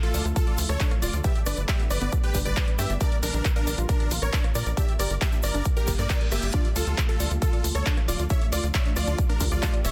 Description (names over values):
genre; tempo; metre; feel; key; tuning
uplifting trance; 136 BPM; 4/4; straight; D harmonic minor; A4 = 440 Hz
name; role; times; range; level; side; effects
dense compressed supersaw; melody; 0.0-9.9 s; D4 to E5; -35 LUFS; equal; sidechain pumping, tape echo
unison pluck; second line; 0.0-9.9 s; A4 to E5; -40 LUFS; equal; phaser, sidechain pumping, tape echo
shimmering ambient pad; sustained chords; 0.0-9.9 s; D3 to B4; -40 LUFS; equal; chorus, built-in reverb, sidechain pumping
tight sequenced synth; arpeggios; 0.0-9.9 s; B3 to A5; -40 LUFS; equal; chorus, sidechain pumping, tape echo
big-room dance drum kit; drums; 0.0-9.9 s; handclaps, hi-hat, rim click; -34 LUFS; equal; studio ambience
tight sequencer bass; bass; 0.1-9.9 s; D1 to Bb2; -30 LUFS; equal; sidechain pumping
tube shaker; percussion; 0.1-9.9 s; none; -41 LUFS; equal; none
electronic kick drum; drums; 0.4-9.7 s; none; -27 LUFS; equal; studio ambience
reverse cymbal; sound effects; 5.8-6.5 s; none; -40 LUFS; equal; none
room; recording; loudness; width
little or no reverb; dense, heavily limited modern master; -25 LUFS; mono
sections
0.0-9.9 A section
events
reverse cymbal 5.8-6.5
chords
0.0 Dm; 1.2 G; 3.0 Bb; 4.8 Gmadd9; 6.5 Dm